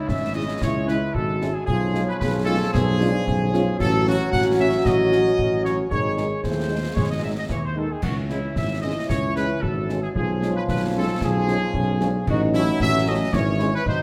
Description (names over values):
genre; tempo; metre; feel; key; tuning
military-style march for wind band; 113 BPM; 2/4; straight; unclear; A4 = 439 Hz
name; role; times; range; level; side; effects
clear trumpet section; melody; 0.0-14.0 s; E4 to F#5; -29 LUFS; equal; none
mellow euphonium; second line; 0.0-14.0 s; B3 to G#4; -28 LUFS; equal; none
warm trombone section; sustained chords; 0.0-14.0 s; G#2 to D#4; -34 LUFS; equal; none
dark tuba; bass; 0.1-14.0 s; G#1 to D#2; -27 LUFS; equal; none
concert snare drum, concert bass drum and clash cymbals; drums; 0.1-14.0 s; none; -30 LUFS; equal; none
dark French horn section; accompaniment; 0.3-13.7 s; E#3 to F#4; -33 LUFS; equal; none
room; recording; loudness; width
wet large studio reverb, RT60 1.2 s; none; -22 LUFS; mono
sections
0.0-14.0 A section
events
none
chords
0.0 C#m; 1.7 C#7/B; 3.8 F#m/A; 5.9 G#; 8.0 C#m; 10.2 C#7/B; 12.3 F#m/A; 13.3 C#m/G#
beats
0.09 | 0.62 1.15 | 1.68 2.21 | 2.74 3.27 | 3.80 4.33 | 4.86 5.39 | 5.92 6.45 | 6.97 7.50 | 8.03 8.56 | 9.09 9.62 | 10.15 10.68 | 11.21 11.74 | 12.27 12.80 | 13.33 13.86